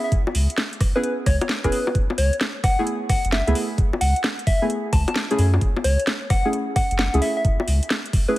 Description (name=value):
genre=UK garage, two-step garage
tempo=131 BPM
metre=4/4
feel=swing 66% on 16ths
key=F# minor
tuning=A4 = 440 Hz
part: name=soft struck synth lead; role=melody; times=0.0-8.4 s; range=B4 to A5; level=-25 LUFS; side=left 1 dB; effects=chorus, tremolo, dub echo
part: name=saturated sub bass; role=bass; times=0.1-8.3 s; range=E1 to F#2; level=-21 LUFS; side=equal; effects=none
part: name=electronic kick drum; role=drums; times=0.1-8.3 s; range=none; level=-21 LUFS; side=equal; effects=none
part: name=garage drum kit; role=drums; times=0.1-8.4 s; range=bongos, hi-hat, rim click, snare drum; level=-26 LUFS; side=equal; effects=none
part: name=deep mellow chord stab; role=stabs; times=1.0-8.4 s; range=A3 to G#4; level=-26 LUFS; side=equal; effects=chorus, dub echo
room=light reverb, digital ambience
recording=heavily compressed radio sound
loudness=-19 LUFS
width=side -16 dB against mid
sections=0.0-8.4 A section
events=none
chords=0.0 C#m7/F#; 1.9 F#m11; 5.4 Amaj7/F#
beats=| 0.12 0.58 1.03 1.49 | 1.95 2.41 2.87 3.32 | 3.78 4.24 4.70 5.16 | 5.61 6.07 6.53 6.99 | 7.45 7.90 8.36